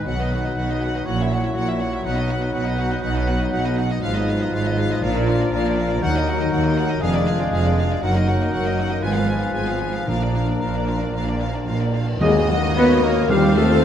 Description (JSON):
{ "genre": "classical, dramatic, fast romantic movement for symphony orchestra", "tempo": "110-123 BPM", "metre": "4/4", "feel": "rubato", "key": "Eb minor from 4.0 s", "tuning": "A4 = 440 Hz", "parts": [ { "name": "clear studio violin section", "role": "melody", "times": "0.0-13.8 s", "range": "D5 to Ab5", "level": "-30 LUFS", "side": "left 2 dB", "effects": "none" }, { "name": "mellow hollow concert flute", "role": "second line", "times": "0.0-13.8 s", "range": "D5 to Cb6", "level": "-33 LUFS", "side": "left 2 dB", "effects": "none" }, { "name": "warm clarinet", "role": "second line", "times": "0.0-13.8 s", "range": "D4 to Cb5", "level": "-30 LUFS", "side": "equal", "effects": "none" }, { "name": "warm oboe", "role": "second line", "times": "0.0-13.8 s", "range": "Ab4 to F5", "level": "-32 LUFS", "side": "equal", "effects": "none" }, { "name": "warm symphonic violin section", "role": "second line", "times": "0.0-13.8 s", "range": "D4 to Eb5", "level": "-33 LUFS", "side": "left 3 dB", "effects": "none" }, { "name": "rich symphonic viola section", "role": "accompaniment", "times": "0.0-13.8 s", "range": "F3 to Gb4", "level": "-31 LUFS", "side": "right 2 dB", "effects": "none" }, { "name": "mellow French horn section", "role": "sustained chords", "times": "0.0-13.8 s", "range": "F3 to Cb5", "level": "-27 LUFS", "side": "left 4 dB", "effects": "none" }, { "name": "concert harp", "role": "arpeggios", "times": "0.0-13.8 s", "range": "F2 to Gb5", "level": "-29 LUFS", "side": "left 8 dB", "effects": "none" }, { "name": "mellow bassoon", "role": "accompaniment", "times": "0.1-13.8 s", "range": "F3 to C4", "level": "-31 LUFS", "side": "right 2 dB", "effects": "none" }, { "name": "clear symphonic cello section", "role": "bass", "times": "0.1-13.8 s", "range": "Eb2 to Cb4", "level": "-24 LUFS", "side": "right 2 dB", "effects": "none" }, { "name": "rich symphonic double bass section", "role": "bass", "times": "0.1-13.8 s", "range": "F1 to Eb2", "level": "-25 LUFS", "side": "right 2 dB", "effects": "none" }, { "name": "timpani", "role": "percussion", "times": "5.0-5.7, 10.1-13.8 s", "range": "Bb2 to Eb3", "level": "-28 LUFS", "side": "right 1 dB", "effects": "none" }, { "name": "cymbal swell and tam-tam", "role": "percussion", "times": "8.0-13.8 s", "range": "none", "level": "-31 LUFS", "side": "equal", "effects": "none" }, { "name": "clear trombone section", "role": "sustained chords", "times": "12.2-13.5 s", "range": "F3 to C4", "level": "-31 LUFS", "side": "right 2 dB", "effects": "none" }, { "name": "clear trumpet", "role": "stabs", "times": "12.2-13.5 s", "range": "Eb5 to F5", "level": "-29 LUFS", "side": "right 1 dB", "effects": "none" } ], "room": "moderate scoring stage reverb, RT60 1.5 s", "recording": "none", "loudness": "-18 LUFS", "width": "side -9 dB against mid", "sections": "0.0-12.2 A section; 12.2-13.8 B section", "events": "band accent 12.2-12.8", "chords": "0.1 B; 1.1 F#7/A#; 2.0 B; 4.0 Fm7b5/Ab; 5.0 Bb; 6.0 Ebm; 7.0 Ddim/F; 8.0 Ebm/Gb; 9.0 Fdim/Ab; 10.1 Bb; 12.2 Ebm; 13.3 F7/Eb" }